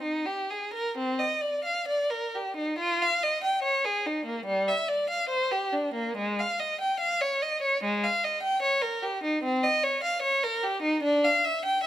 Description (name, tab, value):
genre	classical, baroque-style suite movement for unaccompanied violin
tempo	63-76 BPM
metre	4/4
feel	rubato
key	F minor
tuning	A4 = 437 Hz
part	rich violin	solo	0.0-11.9 s	G3 to G5	-25 LUFS	equal	none
room	moderate recital hall reverb, RT60 1.6 s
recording	close, detailed microphones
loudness	-25 LUFS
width	side -12 dB against mid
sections	0.0-2.8 A section; 2.8-11.9 A section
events	none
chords	none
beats	0.02 0.96 1.87 | 2.78 3.63 4.47 5.30 | 6.17 7.01 7.83 8.62 | 9.42 10.22 11.02 11.82